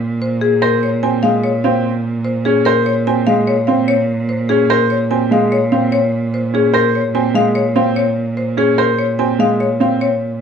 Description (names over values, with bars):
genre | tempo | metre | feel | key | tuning
classical, minimalist pattern music | 147 BPM | 5/4 | straight | Bb minor | A4 = 440 Hz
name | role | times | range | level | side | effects
clear cello | bass | 0.0-10.4 s | Bb2 | -19 LUFS | right 3 dB | none
marimba with hard mallets | melody | 0.2-10.3 s | Ab4 to Ab5 | -17 LUFS | left 7 dB | none
bright baby grand piano | arpeggios | 0.6-10.1 s | C4 to C5 | -19 LUFS | right 8 dB | none
dark baby grand piano | accompaniment | 1.2-10.1 s | Ab3 to C4 | -17 LUFS | right 2 dB | none
room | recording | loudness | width
moderate large studio reverb, RT60 0.9 s | none | -13 LUFS | side -7 dB against mid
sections
0.0-10.4 A section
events
none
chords
0.0 Bbm7